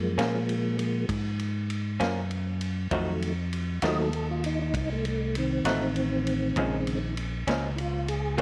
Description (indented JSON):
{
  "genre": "slow blues",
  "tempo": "66 BPM (dotted quarters)",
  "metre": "12/8",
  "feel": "straight",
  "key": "Bb minor",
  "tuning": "A4 = 442 Hz",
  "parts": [
    { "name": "mellow tonewheel organ", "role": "sustained chords", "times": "0.0-8.4 s", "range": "Db3 to Eb5", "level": "-33 LUFS", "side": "equal", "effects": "slow rotary speaker, chorus vibrato" },
    { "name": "fingered electric bass", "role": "bass", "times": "0.0-8.4 s", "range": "A1 to Bb2", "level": "-32 LUFS", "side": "equal", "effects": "none" },
    { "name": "electric guitar through a small old amp", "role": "accompaniment", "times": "0.2-8.4 s", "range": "Gb2 to Gb4", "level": "-34 LUFS", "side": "equal", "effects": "tremolo" },
    { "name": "vintage drum kit", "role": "drums", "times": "0.2-8.4 s", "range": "kick drum, ride cymbal, snare drum", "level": "-38 LUFS", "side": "equal", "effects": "none" }
  ],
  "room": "light reverb, studio reverb",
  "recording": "none",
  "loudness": "-29 LUFS",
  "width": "mono",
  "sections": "0.0-8.4 A section",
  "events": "tonewheel organ solo 0.0-8.4",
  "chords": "0.0 Gbmaj7; 2.9 F7b9; 6.6 Bbm7"
}